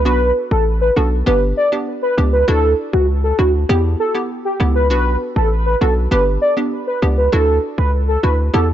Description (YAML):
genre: dancehall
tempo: 99 BPM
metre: 4/4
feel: straight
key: unclear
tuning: A4 = 440 Hz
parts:
  - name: warm velvety synth lead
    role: melody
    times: 0.0-8.7 s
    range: F#4 to D5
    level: -17 LUFS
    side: equal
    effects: chorus, tape echo
  - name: hard-hitting 808-style bass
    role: bass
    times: 0.0-8.7 s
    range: G1 to E2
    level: -16 LUFS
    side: equal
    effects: none
  - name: hollow square pluck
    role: accompaniment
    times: 0.1-8.7 s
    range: B3 to G4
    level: -22 LUFS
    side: equal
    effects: chorus
room: digital ambience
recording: dry, gritty hardware recording, nothing above 7.9 kHz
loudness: -14 LUFS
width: side -11 dB against mid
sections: 0.0-8.7 A section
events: none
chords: 0.1 Bm; 1.3 G; 2.5 Dadd9; 3.7 Em; 4.9 Bm; 6.1 G; 7.3 Dadd9